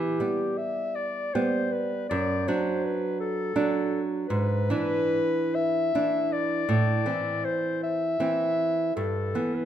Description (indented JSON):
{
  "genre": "romantic duo for clarinet and classical guitar",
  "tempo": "46-56 BPM (dotted quarters)",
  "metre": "6/8",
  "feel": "rubato",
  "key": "A minor from 4.3 s",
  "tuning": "A4 = 440 Hz",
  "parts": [
    { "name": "warm clarinet", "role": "melody", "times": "0.0-9.7 s", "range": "G4 to E5", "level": "-28 LUFS", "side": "left 3 dB", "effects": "none" },
    { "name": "nylon-string guitar", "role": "accompaniment", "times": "0.0-9.7 s", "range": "F#2 to D4", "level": "-27 LUFS", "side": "right 3 dB", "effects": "none" }
  ],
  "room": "moderate recital hall reverb, RT60 1.6 s",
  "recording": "minimal, uncompressed stereo recording",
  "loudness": "-24 LUFS",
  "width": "side -10 dB against mid",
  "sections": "0.0-9.7 A section",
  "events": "none",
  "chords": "0.0 Em (rootless); 2.1 D/F#; 4.3 E7/G#; 6.7 Am; 9.0 Em/G"
}